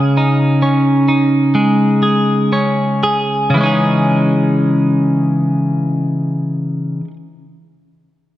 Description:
pop; 57-68 BPM; 4/4; straight; C# minor; A4 = 440 Hz
twelve-string electric guitar; solo; 0.0-7.2 s; C#3 to G#4; -12 LUFS; equal; spring reverb
moderate lush hall reverb, RT60 2.3 s; -12 LUFS; side -14 dB against mid
0.0-3.6 A section; 3.6-7.8 B section
slowing down 0.0-3.6
0.0 C#sus2; 3.6 C#madd9

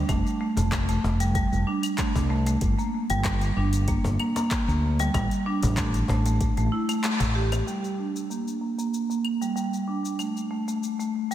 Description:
organic downtempo; 95 BPM; 4/4; swing 53% on 16ths; G minor; A4 = 437 Hz
fretless electric bass; bass; 0.0-7.6 s; F1 to D2; -25 LUFS; equal; wide subtle chorus, sidechain pumping
marimba with medium hard mallets; arpeggios; 0.1-11.3 s; G3 to G4; -26 LUFS; right 1 dB; low-pass filter, analog delay
afro-pop drum kit; drums; 0.1-11.3 s; claves, handclaps, hi-hat, shaker; -34 LUFS; left 2 dB; overdrive
electronic kick drum; drums; 0.1-6.5 s; -29 LUFS; equal; overdrive
cajon; percussion; 0.1-7.6 s; -35 LUFS; left 2 dB
moderate lush hall reverb, RT60 2.5 s; dreamy mix soaked in reverb; -23 LUFS; side -12 dB against mid
0.0-7.7 A section; 7.7-11.3 B section
kick drops out 7.0-7.7; band accent 7.0-7.4; filter sweep on marimba 7.7-11.3
0.1 Fadd9; 2.6 Gm; 5.1 A5; 7.7 Gm; 10.2 N.C.

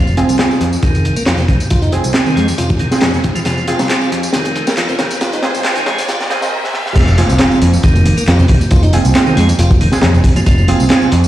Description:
breakbeat, breaks; 137 BPM; 4/4; swing 54% on 16ths; F minor; A4 = 440 Hz
tonewheel organ; riff; 0.0-11.1 s; Eb3 to F4; -20 LUFS; equal; stopped rotary speaker, low-pass filter, digital delay
overdriven picked electric bass; bass; 0.0-11.3 s; F1 to F2; -14 LUFS; equal; low-pass filter
riser and impact; sound effects; 0.0-8.7 s; -26 LUFS; equal
garage drum kit; drums; 0.1-11.3 s; handclaps, hi-hat, tambourine; -23 LUFS; equal; high-pass filter on snare, high-pass filter on perc, high-pass filter on hats, high-pass filter on room
orchestra-hit-like synth stab; stabs; 0.2-11.0 s; C4 to Bb4; -18 LUFS; right 2 dB; built-in reverb, cassette tape, digital delay
crunchy breakbeat drum kit; drums; 0.2-11.2 s; crash cymbal, hi-hat, kick drum, snare drum; -16 LUFS; equal
congas; percussion; 7.0-11.2 s; -24 LUFS; right 1 dB
moderate lush hall reverb, RT60 2.1 s; played on a big sound system in a bare room, stone room reverb, vinyl crackle, high-pass filter; -10 LUFS; side -13 dB against mid
0.0-7.0 A section; 7.0-11.3 B section
build-up 0.0-7.0; riser 0.0-7.0; filter sweep on tonewheel organ 0.0-7.0; filter sweep 0.0-7.0; drum fill 3.5-6.5, 6.6-7.0; drop 7.0-11.3; impact 7.0-8.7
0.0 Fm

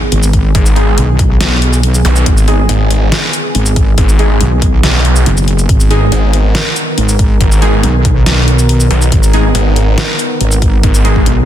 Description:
heavy wobble dubstep; 140 BPM; 4/4; half-time; G# minor; A4 = 440 Hz
supersaw pad; sustained chords; 0.0-11.5 s; D#3 to A#4; -19 LUFS; right 1 dB; sidechain pumping, low-pass filter
impact and zap; sound effects; 0.0-2.2 s; -24 LUFS; equal
wobble bass; bass; 0.1-11.5 s; F#1 to B1; -11 LUFS; equal; chorus, overdrive
dubstep drum kit; drums; 0.1-11.4 s; hi-hat, shaker, snare drum; -17 LUFS; left 1 dB
electronic kick drum; drums; 0.3-11.2 s; -11 LUFS; equal
snarling distorted saw bass; bass; 0.5-11.2 s; G#1 to B1; -11 LUFS; equal; distortion, overdrive
orchestra-hit-like synth stab; stabs; 0.8-11.2 s; G#3 to G#4; -19 LUFS; equal; built-in reverb, ping-pong delay
little or no reverb; dense, heavily limited modern master; -8 LUFS; side -11 dB against mid
0.0-11.5 A section
impact 0.0-0.5
0.0 G#m

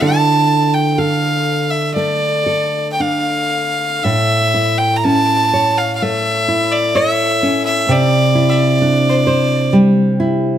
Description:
celtic folk, Celtic slow air; 54-66 BPM; 4/4; rubato; A4 = 443 Hz
clear fiddle; melody; 0.0-9.7 s; C5 to Bb5; -16 LUFS; equal
nylon-string guitar; accompaniment; 0.0-10.6 s; A2 to C#5; -15 LUFS; right 1 dB
light reverb; close, detailed microphones; -12 LUFS; side -10 dB against mid
0.0-4.1 A section; 4.1-10.6 B section
0.0 Dm; 4.1 A; 7.9 Cadd9

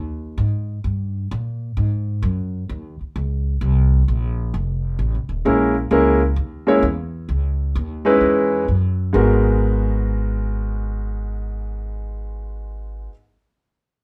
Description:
jazz, big band swing; 130 BPM; 4/4; swing 68% on 8ths; G# minor; A4 = 440 Hz
upright bass; bass; 0.0-13.1 s; D#1 to A#2; -23 LUFS; equal
warm grand piano; accompaniment; 5.5-13.1 s; G#2 to C#5; -20 LUFS; equal
wet small room reverb, RT60 0.5 s; band playing live in one room; -20 LUFS; mono
0.0-5.5 A section; 5.5-9.1 B section; 9.1-12.8 C section
0.0 D#; 1.8 G#5; 3.6 A#sus2; 4.5 D#sus2; 5.5 A#m7b5; 7.3 C#m9; 9.1 G#m9

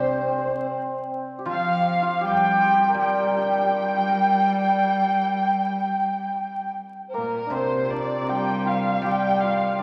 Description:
chinese traditional, Chinese chamber ensemble; 79 BPM; 4/4; rubato; G yu mode; A4 = 440 Hz
rich erhu; melody; 0.0-9.8 s; Bb4 to G5; -29 LUFS; equal
hammered dulcimer; second line; 0.0-9.8 s; Bb3 to Bb4; -31 LUFS; equal
mellow large dizi; second line; 0.0-9.8 s; Bb4 to G5; -27 LUFS; equal
rich cello; second line; 0.0-9.8 s; Bb2 to G3; -32 LUFS; equal
guzheng; accompaniment; 0.0-9.8 s; C3 to D5; -32 LUFS; equal
wet concert hall reverb, RT60 2.5 s; vinyl crackle; -23 LUFS; mono
0.0-7.5 A section; 7.5-9.8 B section

